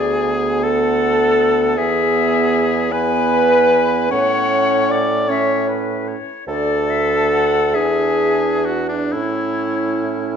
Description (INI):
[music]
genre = classical, slow romantic movement for wind quintet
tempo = 39-53 BPM (dotted quarters)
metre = 6/8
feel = rubato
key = A major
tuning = A4 = 440 Hz
[part]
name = bright concert flute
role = melody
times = 0.0-10.4 s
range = B4 to G#5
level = -23 LUFS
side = left 10 dB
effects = none
[part]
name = clear oboe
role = second line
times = 0.0-10.4 s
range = D4 to D5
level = -22 LUFS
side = left 3 dB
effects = none
[part]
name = dark clarinet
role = accompaniment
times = 0.0-10.4 s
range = B3 to D4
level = -24 LUFS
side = right 11 dB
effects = none
[part]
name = warm French horn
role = accompaniment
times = 0.0-10.4 s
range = D4 to D5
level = -18 LUFS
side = equal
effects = none
[part]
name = warm bassoon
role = bass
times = 0.0-10.4 s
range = D2 to A2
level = -23 LUFS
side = right 3 dB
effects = none
[sound]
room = moderate recital hall reverb, RT60 1.3 s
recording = dark, warm production, nothing above 7.7 kHz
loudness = -14 LUFS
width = side -7 dB against mid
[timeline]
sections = 0.0-10.4 A section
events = none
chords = 0.0 Bm/D; 1.8 E; 4.1 A; 6.5 D5; 7.8 E7; 9.1 A